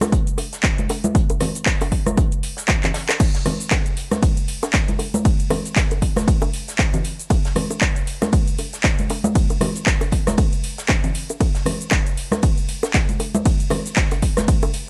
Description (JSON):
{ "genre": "house", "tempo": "117 BPM", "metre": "4/4", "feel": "swing 57% on 16ths", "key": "none", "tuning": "none", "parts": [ { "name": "house drum kit", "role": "drums", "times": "0.0-14.9 s", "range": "crash cymbal, handclaps, hi-hat, ride cymbal, rim click, shaker", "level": "-27 LUFS", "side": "equal", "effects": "overdrive, vintage 12-bit sampler grit" }, { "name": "loose indie drum kit", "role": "drums", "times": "0.0-14.9 s", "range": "hi-hat, snare drum", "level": "-38 LUFS", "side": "equal", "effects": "none" }, { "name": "congas and bongos", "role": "percussion", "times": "0.0-14.7 s", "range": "none", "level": "-26 LUFS", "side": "equal", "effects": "sidechain pumping on perc" }, { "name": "electronic kick drum", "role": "drums", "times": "0.1-14.6 s", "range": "none", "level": "-21 LUFS", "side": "equal", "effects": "overdrive, vintage 12-bit sampler grit" } ], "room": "little or no reverb", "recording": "lossy compression artefacts", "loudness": "-20 LUFS", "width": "mono", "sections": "0.0-14.9 A section", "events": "drum fill 2.8-3.2", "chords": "none" }